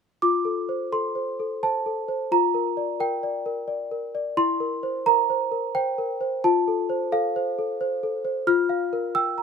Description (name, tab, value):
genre	classical, lullaby for celesta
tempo	87 BPM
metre	3/4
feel	rubato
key	F major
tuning	A4 = 440 Hz
part	small celesta	solo	0.2-9.4 s	E4 to F6	-22 LUFS	equal	none
room	light reverb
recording	minimal, uncompressed stereo recording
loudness	-22 LUFS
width	side -6 dB against mid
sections	0.2-9.4 A section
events	none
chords	0.2 F; 2.3 Gm7/F; 4.4 C7/E; 6.4 F; 8.5 Gm7/F